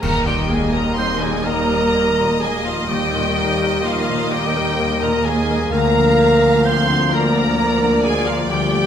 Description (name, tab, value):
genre	cinematic, emotional film score for orchestra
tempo	42 BPM (dotted quarters)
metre	6/8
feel	rubato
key	Eb major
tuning	A4 = 440 Hz
part	rich studio violin section	melody	0.0-8.9 s	F5 to C6	-23 LUFS	left 2 dB	none
part	clear clarinet	second line	0.0-8.9 s	F4 to C5	-21 LUFS	right 1 dB	none
part	clear studio violin section	second line	0.0-8.9 s	D5 to F5	-25 LUFS	left 2 dB	none
part	clear concert grand piano	accompaniment	0.0-8.9 s	D2 to Bb4	-25 LUFS	equal	none
part	dark studio viola section	accompaniment	0.0-8.9 s	Eb3 to Bb3	-26 LUFS	right 1 dB	none
part	dark French horn section	sustained chords	0.0-8.9 s	F3 to C4	-24 LUFS	left 2 dB	none
part	concert harp	arpeggios	0.0-8.9 s	D3 to Bb4	-26 LUFS	left 7 dB	none
part	warm studio cello section	bass	0.0-8.9 s	D2 to Eb2	-26 LUFS	right 4 dB	none
part	warm studio double bass section	bass	0.0-8.9 s	D2 to Eb2	-27 LUFS	right 4 dB	none
part	clash cymbals and concert bass drum	percussion	0.0-1.9 s	none	-29 LUFS	equal	none
room	wet recital hall reverb, RT60 1.4 s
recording	none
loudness	-15 LUFS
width	side -8 dB against mid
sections	0.0-8.9 A section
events	band accent 0.0-1.0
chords	0.0 Eb; 5.7 Bb/D